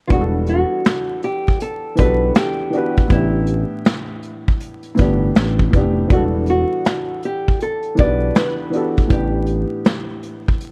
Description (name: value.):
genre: lo-fi hip hop.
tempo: 80 BPM.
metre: 4/4.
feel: swing 66% on 16ths.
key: E minor.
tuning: A4 = 439 Hz.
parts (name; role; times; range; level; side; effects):
nylon-string guitar; melody; 0.1-10.7 s; E4 to D5; -25 LUFS; equal; low-pass filter.
dark upright piano; accompaniment; 0.1-10.7 s; A2 to B4; -24 LUFS; equal; cassette tape, low-pass filter.
smooth synth bass; bass; 0.1-9.7 s; E1 to B1; -22 LUFS; equal; none.
vintage brush drum kit; drums; 0.1-10.7 s; hi-hat, kick drum, snare drum; -19 LUFS; equal; none.
room: small room ambience.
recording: vinyl crackle.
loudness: -18 LUFS.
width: mono.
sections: 0.1-10.7 A section.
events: none.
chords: 0.1 Em11; 3.1 A7sus4; 6.1 Em11; 9.1 A7sus4.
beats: | 0.10 0.85 1.60 2.35 | 3.10 3.85 4.60 5.35 | 6.10 6.85 7.60 8.35 | 9.10 9.85 10.60.